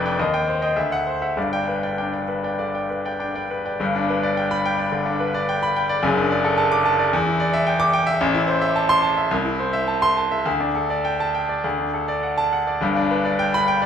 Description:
classical, virtuoso piano study; 97-111 BPM; 4/4; rubato; G major; A4 = 440 Hz
bright grand piano; solo; 0.0-13.9 s; F1 to D6; -19 LUFS; equal
moderate recital hall reverb, RT60 1.3 s; minimal, uncompressed stereo recording; -19 LUFS; side -8 dB against mid
0.0-3.8 A section; 3.8-13.9 A section
0.2 Cm/Eb; 0.8 D9; 1.4 G; 6.0 D/F#; 7.1 Em7; 8.2 Am; 9.3 Am/C; 10.5 Dsus4; 11.6 D; 12.8 G

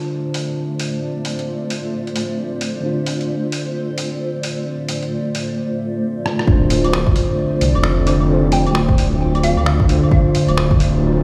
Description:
future garage; 132 BPM; 4/4; swing 61% on 16ths; A4 = 441 Hz
muted felt-like synth keys; accompaniment; 0.0-11.2 s; D3 to C5; -23 LUFS; equal; chorus, sidechain pumping, digital delay
granular cloud pad; sustained chords; 0.0-11.2 s; A3 to A5; -26 LUFS; equal; built-in reverb, vintage 12-bit sampler grit, sidechain pumping
lo-fi sampler-style drum kit; drums; 0.3-10.9 s; claves, finger snaps, hi-hat, rim click; -28 LUFS; equal; overdrive
swelling detuned saw bass; bass; 6.5-11.2 s; D1 to D2; -20 LUFS; equal
electronic kick drum; drums; 6.5-10.8 s; -18 LUFS; equal; overdrive
hollow square pluck; melody; 8.5-9.9 s; F5 to G5; -28 LUFS; equal; chorus, digital delay
moderate huge ambient reverb, RT60 4.3 s; played on a big sound system in a bare room, large studio reverb; -18 LUFS; mono
0.0-6.5 A section; 6.5-11.2 B section
drum fill 6.3
0.0 Dm7

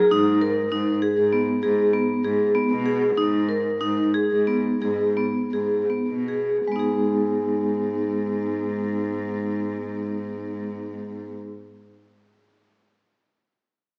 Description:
contemporary instrumental, chamber music in an uneven meter; 75-99 BPM; 5/4; straight; G# minor; A4 = 440 Hz
vibraphone with medium mallets; arpeggios; 0.0-11.5 s; G#3 to A#4; -24 LUFS; equal
warm cello; bass; 0.1-11.4 s; G#2 to B2; -32 LUFS; equal
moderate concert hall reverb, RT60 2.0 s; recorded in a church or concert hall, small speaker sound; -23 LUFS; mono
0.1-6.7 A section; 6.7-10.6 B section
slowing down 1.3-6.7
0.1 G#m

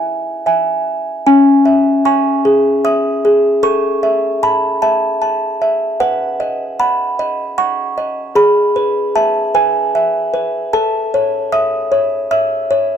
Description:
classical, lullaby for music box; 76 BPM; 3/4; straight; E major; A4 = 440 Hz
music box; solo; 0.0-13.0 s; C#4 to E6; -12 LUFS; equal
moderate plate reverb, RT60 3.2 s; dark, warm production; -12 LUFS; side -8 dB against mid
0.0-1.3 A section; 1.3-13.0 B section
0.0 E; 1.3 C#m; 3.6 A; 6.0 B; 8.4 E/G#; 10.7 A

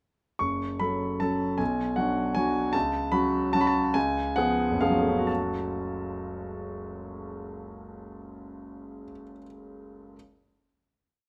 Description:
classical, piano waltz; 123-161 BPM; 3/4; rubato; F# minor; A4 = 440 Hz
warm concert grand piano; solo; 0.4-10.2 s; F#1 to C#6; -29 LUFS; equal
light reverb; close, detailed microphones; -27 LUFS; mono
0.4-5.3 A section; 5.3-8.0 final chord
slowing down 2.2-5.3
0.4 F#m; 1.6 Bm; 2.7 F#m/C#; 4.0 C#7; 5.3 F#m

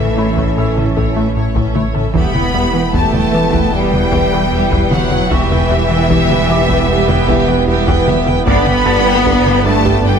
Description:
cinematic, hybrid orchestral and electronic film score; 76 BPM; 4/4; straight; E dorian; A4 = 440 Hz
clear symphonic violin section; melody; 0.0-10.2 s; E5 to B5; -20 LUFS; left 2 dB
dark symphonic violin section; second line; 0.0-10.2 s; G4 to G5; -22 LUFS; left 1 dB
rich symphonic viola section; accompaniment; 0.0-10.2 s; G3 to G4; -23 LUFS; right 3 dB
chorused pulse-width pad; sustained chords; 0.0-10.2 s; D3 to C#5; -22 LUFS; equal
clear French horn section; sustained chords; 0.0-10.2 s; E3 to B3; -22 LUFS; left 3 dB
clear trombone section; sustained chords; 0.0-10.2 s; D3 to C#4; -23 LUFS; right 6 dB
tight sequenced synth; arpeggios; 0.0-10.0 s; E3 to A4; -24 LUFS; right 1 dB
rubbery square bass; riff; 0.0-10.2 s; E2 to A3; -20 LUFS; left 3 dB
rich symphonic cello section; bass; 0.0-10.2 s; E3 to B3; -20 LUFS; right 1 dB
rich symphonic double bass section; bass; 0.0-10.2 s; E1 to A1; -21 LUFS; right 5 dB
sub bass with octave; bass; 0.0-10.2 s; E1 to A1; -23 LUFS; equal
felt-muted upright piano; texture; 0.2-10.2 s; E5 to A6; -29 LUFS; left 1 dB
solo taiko drums; drums; 0.4-10.2 s; -21 LUFS; equal
moderate scoring stage reverb, RT60 1.7 s; -11 LUFS; side -7 dB against mid
0.0-10.2 A section
0.0 A; 2.2 Em; 8.5 G

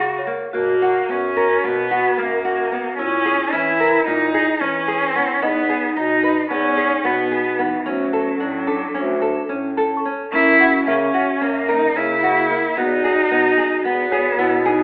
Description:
contemporary instrumental, chamber music in an uneven meter; 221 BPM (eighths); 9/8; straight; E lydian; A4 = 440 Hz
warm cello; melody; 0.0-14.8 s; E3 to F#4; -19 LUFS; equal
vibraphone with soft mallets; second line; 0.0-14.8 s; A#3 to G#4; -23 LUFS; equal
nylon-string guitar; arpeggios; 0.0-14.8 s; A#3 to B4; -22 LUFS; equal
mellow bass clarinet; bass; 0.0-14.8 s; D2 to E3; -25 LUFS; equal
small celesta; texture; 0.0-14.8 s; G#4 to C#6; -27 LUFS; equal
wet recital hall reverb, RT60 1.4 s; telephone sound; -16 LUFS; side -36 dB against mid
0.0-10.3 A section; 10.3-14.8 B section
0.0 F#; 0.5 B5; 3.0 A#m7b5; 5.4 Emaj7; 7.9 Dmaj7; 10.3 F#7; 12.8 Emaj7

